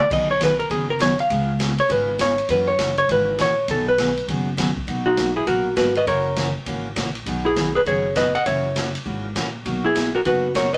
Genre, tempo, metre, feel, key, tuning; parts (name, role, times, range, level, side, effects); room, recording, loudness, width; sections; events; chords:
country, western swing; 201 BPM; 4/4; swing 63% on 8ths; B major; A4 = 440 Hz
hollow-body jazz guitar; melody; 0.0-10.8 s; D#4 to F#5; -22 LUFS; equal
swinging big-band drum kit; drums; 0.0-10.8 s; crash cymbal, hi-hat, kick drum, ride cymbal, snare drum, toms; -32 LUFS; equal
picked steel-string acoustic guitar; accompaniment; 0.1-10.7 s; B2 to G#4; -29 LUFS; equal
upright bass; bass; 0.1-10.7 s; F#1 to F#2; -31 LUFS; equal
moderate studio reverb, RT60 0.5 s; -21 LUFS; mono
0.0-4.9 A section; 4.9-10.8 B section
hollow-body jazz guitar solo 0.0-4.9
0.1 B6; 1.3 C#7; 2.5 F#7; 3.7 B6; 4.9 Bmaj7; 6.1 F#7; 7.3 B6; 8.5 F#7; 9.7 Bmaj7